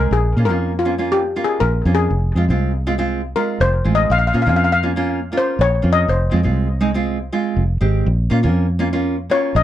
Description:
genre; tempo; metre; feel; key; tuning
calypso; 121 BPM; 4/4; straight; unclear; A4 = 440 Hz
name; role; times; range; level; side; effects
steel pan; melody; 0.0-9.6 s; F4 to F5; -19 LUFS; left 3 dB; analog delay
nylon-string guitar; accompaniment; 0.0-9.6 s; Ab3 to Ab4; -22 LUFS; right 3 dB; none
fingered electric bass; bass; 0.0-9.6 s; F1 to Bb2; -18 LUFS; equal; none
room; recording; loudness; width
light reverb; dark, warm production, tape saturation; -15 LUFS; side -12 dB against mid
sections
0.0-9.6 A section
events
steel pan solo 0.0-9.6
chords
0.1 Bbm; 2.1 Fm; 4.1 Bbm; 6.1 Fm; 8.1 Bbm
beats
| 0.12 0.62 1.11 1.61 | 2.11 2.60 3.10 3.60 | 4.09 4.59 5.08 5.58 | 6.08 6.57 7.07 7.57 | 8.06 8.56 9.05 9.55

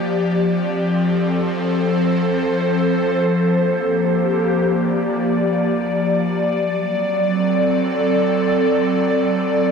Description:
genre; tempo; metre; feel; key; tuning
ambient; free time; none; none; G minor; A4 = 442 Hz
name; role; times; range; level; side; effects
airy breathy pad; solo; 0.0-9.7 s; F3 to D5; -16 LUFS; equal; chorus, diffuse ambient delay
room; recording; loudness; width
wet concert hall reverb, RT60 2.3 s; none; -16 LUFS; side -6 dB against mid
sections
0.0-3.3 A section; 3.3-9.7 B section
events
none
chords
0.0 F; 3.3 Gm7; 6.4 D7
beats
free time

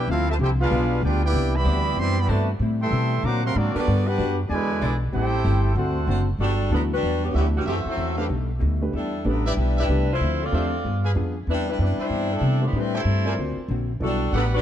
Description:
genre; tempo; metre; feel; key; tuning
jazz; 189 BPM; 4/4; swing 62% on 8ths; G major; A4 = 440 Hz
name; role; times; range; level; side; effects
clear trumpet section; melody; 0.0-6.3 s; B3 to D6; -28 LUFS; right 1 dB; none
bright trombone section; second line; 0.0-6.3 s; B2 to G4; -27 LUFS; right 2 dB; none
upright bass; bass; 0.0-14.6 s; F#1 to C3; -23 LUFS; equal; none
vintage hollow-body jazz guitar; accompaniment; 0.1-14.5 s; F#2 to Ab4; -32 LUFS; left 5 dB; none
clear saxophone section; sustained chords; 0.7-6.2 s; G3 to D5; -36 LUFS; equal; none
warm saxophone section; melody; 6.4-14.6 s; D3 to D5; -26 LUFS; left 1 dB; none
clear trumpet section; stabs; 6.4-14.6 s; F4 to Ab5; -33 LUFS; right 2 dB; none
warm baby grand piano; accompaniment; 6.7-14.2 s; E3 to D5; -31 LUFS; right 2 dB; none
room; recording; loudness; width
light reverb; dark, warm production; -20 LUFS; side -10 dB against mid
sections
0.0-6.4 A section; 6.4-14.6 B section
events
none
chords
0.1 Dm9; 0.7 G7b9; 1.3 Cmaj9; 2.6 Am7; 3.2 D7b13; 3.9 Gmaj7; 4.5 E7; 5.1 Am7; 5.8 D7; 6.4 Gmaj7; 7.7 F#m7b5; 8.3 B7alt; 8.9 Em7; 10.2 Dm9; 10.8 G7b9; 11.5 Cmaj9; 12.7 Am7; 13.4 D7alt; 14.0 Gmaj7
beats
| 0.08 0.39 0.71 1.02 | 1.34 1.66 1.97 2.29 | 2.61 2.92 3.24 3.55 | 3.87 4.19 4.50 4.82 | 5.13 5.45 5.77 6.08 | 6.40 6.71 7.03 7.35 | 7.67 7.98 8.30 8.62 | 8.93 9.25 9.57 9.88 | 10.20 10.52 10.84 11.15 | 11.47 11.79 12.11 12.42 | 12.74 13.06 13.37 13.69 | 14.01 14.32

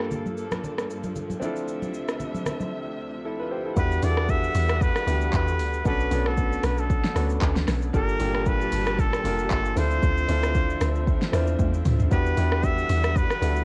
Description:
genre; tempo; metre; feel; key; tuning
amapiano; 115 BPM; 4/4; swing 55% on 16ths; E minor; A4 = 436 Hz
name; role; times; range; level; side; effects
bright baby grand piano; accompaniment; 0.0-13.6 s; Bb2 to C5; -32 LUFS; equal; cassette tape
warm studio string section; sustained chords; 0.0-13.6 s; D2 to A5; -38 LUFS; equal; sidechain pumping, cassette tape
deep house drum kit; drums; 0.0-13.6 s; handclaps, hi-hat, kick drum, rim click, shaker, snare drum, toms; -29 LUFS; equal; overdrive, cassette tape
congas; percussion; 0.1-2.7 s; none; -36 LUFS; equal; none
trumpet with straight mute; melody; 3.8-13.6 s; A4 to E5; -31 LUFS; equal; cassette tape
deep log drum bass; bass; 3.8-13.6 s; F1 to E2; -28 LUFS; equal; none
room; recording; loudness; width
little or no reverb; home recording on cassette; -25 LUFS; mono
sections
0.0-3.8 A section; 3.8-13.6 B section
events
silent gap 2.7-3.8; drop 3.8-13.6; drum fill 11.6-12.1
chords
0.0 Gm9; 1.4 Dm9; 3.8 Em9; 5.9 Bm9; 7.9 Gm9; 9.8 Dm9; 12.1 Em9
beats
0.12 0.64 1.16 | 1.68 2.20 2.72 3.25 | 3.77 4.29 4.81 5.33 | 5.85 6.38 6.90 7.42 | 7.94 8.46 8.98 9.51 | 10.03 10.55 11.07 11.59 | 12.12 12.64 13.16

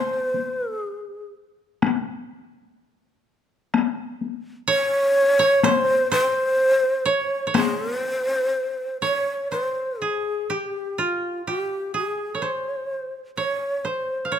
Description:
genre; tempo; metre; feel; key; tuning
japanese traditional, Japanese chamber music; 63 BPM; 2/4; rubato; C miyako bushi; A4 = 441 Hz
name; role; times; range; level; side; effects
breathy long shakuhachi; melody; 0.0-1.3, 4.7-14.4 s; F4 to Db5; -22 LUFS; equal; none
koto; second line; 0.0-1.6, 4.7-14.4 s; F4 to F5; -26 LUFS; right 3 dB; none
taiko ensemble; percussion; 0.3-7.8 s; none; -23 LUFS; left 7 dB; none
room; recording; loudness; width
light reverb; close, detailed microphones; -21 LUFS; side -9 dB against mid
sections
0.0-9.5 A section; 9.5-14.4 B section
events
none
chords
none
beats
0.84 | 1.83 2.80 | 3.74 4.68 | 5.64 6.59 | 7.54 8.53 | 9.52 10.51 | 11.48 12.44 | 13.38 14.33

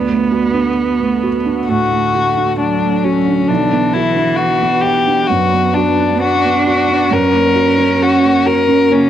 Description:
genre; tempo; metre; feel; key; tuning
neoclassical piano and strings; 66 BPM; 4/4; rubato; B minor; A4 = 440 Hz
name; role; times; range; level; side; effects
warm cello; second line; 0.0-9.1 s; E3 to D4; -17 LUFS; right 4 dB; cassette tape
felt-muted upright piano; accompaniment; 0.0-9.1 s; B1 to F#5; -18 LUFS; right 5 dB; cassette tape
deep dark ambient pad; sustained chords; 0.0-9.1 s; D3 to F#5; -25 LUFS; left 2 dB; chorus, built-in reverb, cassette tape
rich violin; melody; 1.7-9.1 s; C#4 to A#4; -14 LUFS; left 5 dB; cassette tape
room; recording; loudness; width
moderate spring reverb, RT60 1.2 s, studio ambience; home recording on cassette; -12 LUFS; side -10 dB against mid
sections
0.0-9.1 A section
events
none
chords
0.0 D; 3.5 Bm; 7.1 F#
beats
0.78 1.69 2.59 | 3.49 4.39 5.30 6.22 | 7.12 8.02 8.92

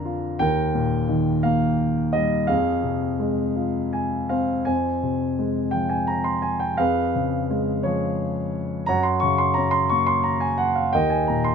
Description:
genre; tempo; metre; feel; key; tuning
classical, lyrical solo piano; 58 BPM (dotted quarters); 6/8; rubato; unclear; A4 = 440 Hz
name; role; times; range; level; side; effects
dark baby grand piano; solo; 0.0-11.5 s; Eb2 to Db6; -20 LUFS; equal; none
room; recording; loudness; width
little or no reverb; close, detailed microphones; -20 LUFS; side -6 dB against mid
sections
0.0-4.7 A section; 4.7-11.5 B section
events
grand piano fill 3.6-4.7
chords
0.4 Eb; 2.5 Fm; 6.8 Db7/F; 8.9 Gb; 10.9 Eb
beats
| 0.41 1.45 | 2.49 3.56 | 4.66 5.73 | 6.79 7.84 | 8.88 9.90 | 10.94

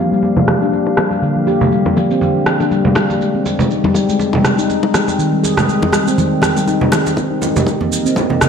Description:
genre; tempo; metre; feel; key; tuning
afro house; 121 BPM; 4/4; swing 56% on 16ths; C minor; A4 = 440 Hz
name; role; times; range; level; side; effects
dark analog pad; sustained chords; 0.0-8.5 s; Bb3 to G5; -21 LUFS; left 2 dB; chorus, sidechain pumping
handpan; arpeggios; 0.1-8.4 s; D3 to Ab4; -16 LUFS; left 1 dB; vintage 12-bit sampler grit, sidechain pumping, low-pass filter, ping-pong delay
deep house drum kit; drums; 0.1-8.5 s; rim click, shaker, toms; -20 LUFS; right 1 dB; high-pass filter on perc, high-pass filter on snare, high-pass filter on toms, high-pass filter on room
congas; percussion; 0.2-8.5 s; none; -20 LUFS; right 3 dB; none
bongos; percussion; 0.4-7.0 s; none; -23 LUFS; left 3 dB; none
electronic kick drum; drums; 7.2-8.3 s; none; -21 LUFS; left 1 dB; high-pass filter on kick, high-pass filter on room
room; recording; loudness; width
moderate lush hall reverb, RT60 2.0 s; dark, warm production, low-pass filter; -12 LUFS; side -6 dB against mid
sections
0.0-7.2 A section; 7.2-8.5 B section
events
filter sweep on drum 0.0-7.2; filter sweep on handpan 0.0-7.2, 7.2-8.5; filter sweep 0.0-7.2; build-up 7.2-8.5; drum fill 7.2-8.5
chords
0.0 Gm7; 3.2 Abmaj7; 7.2 Cm7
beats
0.23 0.73 | 1.22 1.72 2.21 2.71 | 3.21 3.70 4.20 4.69 | 5.19 5.69 6.18 6.68 | 7.17 7.67 8.16

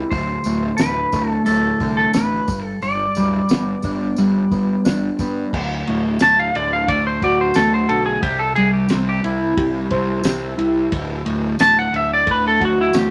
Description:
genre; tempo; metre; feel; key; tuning
psychedelic rock; 89 BPM; 4/4; straight; D mixolydian; A4 = 440 Hz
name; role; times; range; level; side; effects
mellow electric guitar; riff; 0.0-13.1 s; D2 to C5; -22 LUFS; equal; phaser
clean lap steel guitar; melody; 0.1-13.1 s; E4 to A5; -21 LUFS; equal; none
fuzz fingered electric bass; bass; 0.1-13.1 s; D1 to G2; -30 LUFS; equal; overdrive
cloth-damped thuddy drum kit; drums; 0.1-13.1 s; crash cymbal, hi-hat, kick drum, ride cymbal, snare drum; -26 LUFS; equal; none
tambourine; percussion; 0.4-13.1 s; none; -38 LUFS; equal; none
room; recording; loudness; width
moderate studio reverb, RT60 0.5 s; none; -18 LUFS; mono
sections
0.0-5.5 A section; 5.5-13.1 B section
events
electric slide guitar solo 5.5-13.1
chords
0.1 D5; 2.5 G; 5.5 D; 8.2 C; 10.9 D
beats
| 0.12 0.79 1.47 2.15 | 2.82 3.50 4.17 4.85 | 5.53 6.20 6.88 7.55 | 8.23 8.90 9.57 10.25 | 10.92 11.60 12.27 12.95

